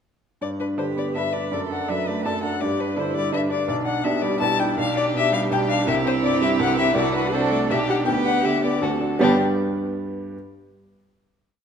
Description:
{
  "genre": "quick classical-period movement for piano quintet",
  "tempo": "164 BPM",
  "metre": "3/4",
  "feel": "rubato",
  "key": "G major",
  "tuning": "A4 = 440 Hz",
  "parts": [
    { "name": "warm violin", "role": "melody", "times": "0.4-9.4 s", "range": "G4 to A5", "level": "-25 LUFS", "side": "left 7 dB", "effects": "none" },
    { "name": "clear baby grand piano", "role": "accompaniment", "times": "0.4-10.4 s", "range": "B1 to D5", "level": "-24 LUFS", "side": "right 1 dB", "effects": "none" },
    { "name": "rich cello", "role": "second line", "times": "0.8-9.4 s", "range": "D3 to B4", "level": "-28 LUFS", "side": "right 8 dB", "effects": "none" },
    { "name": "rich violin", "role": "second line", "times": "0.8-9.4 s", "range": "D4 to B4", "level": "-31 LUFS", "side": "left 3 dB", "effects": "none" },
    { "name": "rich viola", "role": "accompaniment", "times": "0.8-9.4 s", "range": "B3 to D4", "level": "-27 LUFS", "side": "right 4 dB", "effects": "none" }
  ],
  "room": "wet recital hall reverb, RT60 1.5 s",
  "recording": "none",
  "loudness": "-20 LUFS",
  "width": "side -7 dB against mid",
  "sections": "0.4-9.2 variation; 9.2-10.3 final chord",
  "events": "none",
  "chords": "0.4 G; 1.5 D/F#; 2.6 G; 3.7 G/B; 5.9 C; 6.9 D7/C; 7.7 G/B; 8.1 G/D; 8.8 D7; 9.2 G",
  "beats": "| 0.41 0.79 1.16 | 1.52 1.89 2.26 | 2.62 2.98 3.34 | 3.70 4.06 4.42 | 4.78 5.15 5.51 | 5.87 6.23 6.58 | 6.95 7.31 7.68 | 8.05 8.43 8.81 | 9.19 9.57 9.95"
}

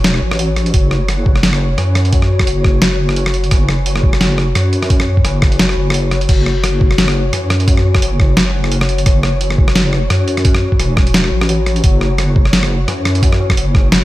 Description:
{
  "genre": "half-time drum and bass",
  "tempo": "173 BPM",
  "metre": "4/4",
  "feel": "swing 56% on 16ths, half-time",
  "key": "unclear",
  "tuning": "A4 = 440 Hz",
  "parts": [
    { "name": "santur", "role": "arpeggios", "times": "0.0-14.0 s", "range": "E3 to F#4", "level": "-22 LUFS", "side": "left 4 dB", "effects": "dub echo" },
    { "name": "deep soft wobble bass", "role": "bass", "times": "0.0-14.0 s", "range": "E1 to F#2", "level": "-15 LUFS", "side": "equal", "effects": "chorus" },
    { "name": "boom bap sampler-style drum kit", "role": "drums", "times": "0.0-14.0 s", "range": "crash cymbal, hi-hat, rim click, snare drum", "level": "-17 LUFS", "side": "equal", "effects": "studio reverb" },
    { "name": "flickering grainy texture", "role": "texture", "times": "0.0-14.0 s", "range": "C#5", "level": "-28 LUFS", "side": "left 2 dB", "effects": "built-in reverb" },
    { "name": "electronic kick drum", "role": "drums", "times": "0.7-13.8 s", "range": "none", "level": "-13 LUFS", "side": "equal", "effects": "studio reverb" }
  ],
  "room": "little or no reverb",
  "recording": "none",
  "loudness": "-11 LUFS",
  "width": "side -16 dB against mid",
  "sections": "0.0-14.0 A section",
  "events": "kick drops out 5.9-6.3",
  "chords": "0.0 F#5",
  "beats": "0.05 0.39 | 0.74 1.09 1.43 1.78 | 2.13 2.48 2.82 3.17 | 3.52 3.86 4.21 4.56 | 4.90 5.25 5.60 5.94 | 6.29 6.64 6.98 7.33 | 7.68 8.02 8.37 8.72 | 9.06 9.41 9.76 10.11 | 10.45 10.80 11.14 11.49 | 11.84 12.19 12.53 12.88 | 13.23 13.57 13.92"
}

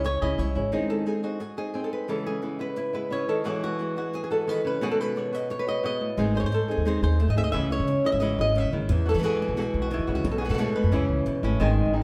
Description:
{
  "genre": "flamenco",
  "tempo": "176 BPM",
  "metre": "4/4",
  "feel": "straight",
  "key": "C# minor",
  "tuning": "A4 = 440 Hz",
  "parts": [
    { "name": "flamenco guitar", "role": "melody", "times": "0.0-12.0 s", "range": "A2 to E5", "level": "-29 LUFS", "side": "equal", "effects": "none" },
    { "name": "flamenco guitar", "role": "stabs", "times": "0.0-11.6 s", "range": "B2 to G#4", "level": "-34 LUFS", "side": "equal", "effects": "none" },
    { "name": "upright bass", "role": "bass", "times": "0.0-0.7, 6.2-12.0 s", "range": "G#1 to E3", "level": "-28 LUFS", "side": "equal", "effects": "none" }
  ],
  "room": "wet stone room reverb, RT60 1.4 s",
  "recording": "heard from further back in the room",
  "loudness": "-26 LUFS",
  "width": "mono",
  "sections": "0.7-11.6 A section",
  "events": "none",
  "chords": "0.0 C#m; 0.7 G#; 2.1 C#m7; 3.5 Eadd9; 4.8 B6; 6.2 G#; 7.5 C#m7; 8.9 Eadd9; 10.2 B6; 10.9 C#m",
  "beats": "0.05 0.39 | 0.73 1.07 1.41 1.75 | 2.09 2.43 2.77 3.11 | 3.45 3.79 4.14 4.48 | 4.82 5.16 5.50 5.84 | 6.18 6.52 6.86 7.20 | 7.54 7.88 8.22 8.55 | 8.89 9.23 9.57 9.91 | 10.25 10.58 10.92 11.26 | 11.60 11.93"
}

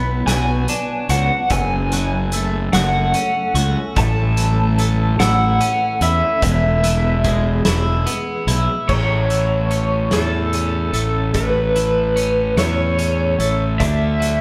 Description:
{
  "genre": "post-rock",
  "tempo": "49 BPM (dotted quarters)",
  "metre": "6/8",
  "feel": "straight",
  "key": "A major",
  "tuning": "A4 = 440 Hz",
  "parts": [
    { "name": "raw garage guitar", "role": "melody", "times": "0.0-14.4 s", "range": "A4 to B5", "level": "-23 LUFS", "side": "equal", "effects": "overdrive, tremolo" },
    { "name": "granular cloud pad", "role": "sustained chords", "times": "0.0-8.9 s", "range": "E3 to B4", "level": "-32 LUFS", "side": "equal", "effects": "built-in reverb" },
    { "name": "twelve-string electric guitar", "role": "arpeggios", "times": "0.0-14.4 s", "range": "E2 to F#4", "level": "-25 LUFS", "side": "equal", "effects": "tremolo" },
    { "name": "fuzz fingered electric bass", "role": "bass", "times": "0.0-14.4 s", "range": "E1 to E2", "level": "-22 LUFS", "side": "equal", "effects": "overdrive" },
    { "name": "loose indie drum kit", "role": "drums", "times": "0.3-14.4 s", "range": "crash cymbal, hi-hat, kick drum, snare drum", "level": "-26 LUFS", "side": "equal", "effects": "none" }
  ],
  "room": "wet stone room reverb, RT60 1.2 s",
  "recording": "band playing live in one room",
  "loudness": "-18 LUFS",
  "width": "mono",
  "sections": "0.0-8.9 A section; 8.9-14.4 B section",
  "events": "none",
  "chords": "0.0 Bm; 1.5 F#m; 4.0 A; 6.4 E; 8.9 A; 13.8 Dadd9",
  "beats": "0.28 | 1.51 2.74 | 3.97 5.20 | 6.43 7.66 | 8.89 10.12 | 11.35 12.58 | 13.81"
}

